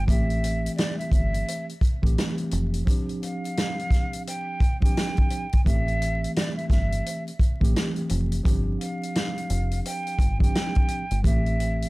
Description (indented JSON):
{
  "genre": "hip hop, boom-bap hip-hop",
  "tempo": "86 BPM",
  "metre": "4/4",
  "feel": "swing 61% on 16ths",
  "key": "A minor",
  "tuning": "A4 = 445 Hz",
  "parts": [
    { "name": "breathy mellow silver concert flute", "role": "melody", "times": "0.0-11.9 s", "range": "D5 to G5", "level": "-32 LUFS", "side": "right 1 dB", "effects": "high-pass filter, low-pass filter, tape echo" },
    { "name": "deep dub fingered electric bass", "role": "bass", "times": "0.0-11.8 s", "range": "F1 to A1", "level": "-25 LUFS", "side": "equal", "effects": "transformer saturation" },
    { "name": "mellow tine electric piano", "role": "accompaniment", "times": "0.1-11.9 s", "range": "E3 to G4", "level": "-30 LUFS", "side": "equal", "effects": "medium stereo tremolo, cassette tape, high-pass filter, low-pass filter" },
    { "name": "vintage drum kit", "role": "drums", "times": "0.1-11.9 s", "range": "hi-hat, kick drum, rim click, snare drum", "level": "-23 LUFS", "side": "equal", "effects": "none" }
  ],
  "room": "little or no reverb",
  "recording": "dry, gritty hardware recording, vinyl crackle",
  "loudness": "-22 LUFS",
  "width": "side -21 dB against mid",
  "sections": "0.0-11.9 A section",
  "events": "none",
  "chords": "0.1 Am7; 2.9 G7sus4; 5.7 Am7; 8.5 G7sus4; 11.2 Am7"
}